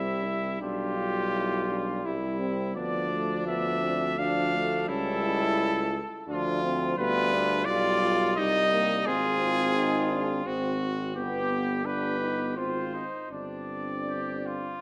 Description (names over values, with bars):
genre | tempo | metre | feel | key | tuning
classical, brass quintet | 86 BPM | 3/4 | rubato | unclear | A4 = 440 Hz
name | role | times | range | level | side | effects
mellow trumpet | melody | 0.0-14.8 s | G4 to F5 | -32 LUFS | equal | none
bright trumpet | second line | 0.0-14.8 s | D4 to G4 | -36 LUFS | equal | none
mellow French horn | accompaniment | 0.0-14.8 s | F3 to C4 | -36 LUFS | equal | none
mellow trombone | accompaniment | 0.0-14.8 s | A3 to F4 | -36 LUFS | equal | none
clear bass trombone | bass | 0.0-14.8 s | G1 to D2 | -36 LUFS | equal | none
room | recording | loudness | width
moderate recital hall reverb, RT60 1.8 s | none | -28 LUFS | mono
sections
0.0-14.8 A section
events
none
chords
0.0 C; 0.6 G7/B; 2.1 C; 2.8 Dm; 4.9 A7/C#; 6.3 Dm; 7.0 G7/D; 8.4 Cm; 9.1 Fm/Ab; 10.5 Ab7; 11.2 G; 12.6 Fm/Ab; 13.3 Gsus4